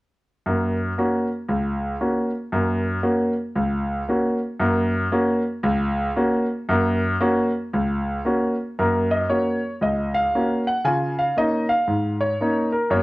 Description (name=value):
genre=jazz, stride piano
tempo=116 BPM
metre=4/4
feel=swing 63% on 8ths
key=F# major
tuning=A4 = 442 Hz
part: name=clear grand piano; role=solo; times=0.5-13.0 s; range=C#2 to G#5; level=-20 LUFS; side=equal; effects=none
room=moderate club reverb, RT60 0.8 s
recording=none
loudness=-20 LUFS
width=side -20 dB against mid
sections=0.5-8.8 A section; 8.8-13.0 B section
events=none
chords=0.5 F#; 10.9 C#69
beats=| 0.47 0.99 1.50 2.02 | 2.54 3.06 3.58 4.10 | 4.62 5.14 5.66 6.18 | 6.70 7.22 7.74 8.26 | 8.78 9.30 9.82 10.34 | 10.86 11.38 11.90 12.42 | 12.94